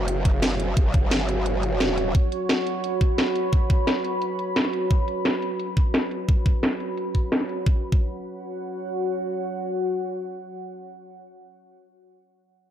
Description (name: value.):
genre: dark technical drum and bass.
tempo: 174 BPM.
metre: 4/4.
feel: straight.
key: unclear.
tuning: A4 = 440 Hz.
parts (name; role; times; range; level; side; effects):
deep dark ambient pad; sustained chords; 0.0-11.2 s; F#4 to B5; -27 LUFS; right 1 dB; chorus, built-in reverb, sidechain pumping.
growl bass; bass; 0.0-2.1 s; F#1 to G1; -25 LUFS; equal; chorus, sidechain pumping.
drum and bass drum kit; drums; 0.1-7.6 s; hi-hat, snare drum; -26 LUFS; equal; overdrive, low-pass filter on hats, small room reverb, low-pass filter on perc, low-pass filter on snare, low-pass filter on toms, low-pass filter on cymbals.
electronic kick drum; drums; 0.3-8.0 s; none; -20 LUFS; equal; small room reverb.
room: light reverb.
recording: none.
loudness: -21 LUFS.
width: side -10 dB against mid.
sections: 0.0-7.7 A section; 7.7-10.4 B section.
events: filter sweep on drum 0.0-7.7.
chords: 0.0 F#5.